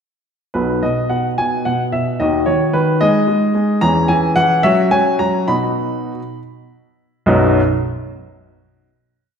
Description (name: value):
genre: classical-period piano sonatina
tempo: 66-75 BPM (dotted quarters)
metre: 6/8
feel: rubato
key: B major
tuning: A4 = 440 Hz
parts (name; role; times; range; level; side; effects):
- clear baby grand piano; solo; 0.5-7.6 s; B1 to B5; -14 LUFS; equal; none
room: wet recital hall reverb, RT60 1.4 s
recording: heard from further back in the room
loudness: -14 LUFS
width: side -6 dB against mid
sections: 0.5-7.3 A section; 7.3-9.0 final chord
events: slowing down 3.0-7.3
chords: 0.5 B; 2.2 D#m7; 3.0 G#5; 3.8 C#m/E; 4.6 F#5; 5.5 B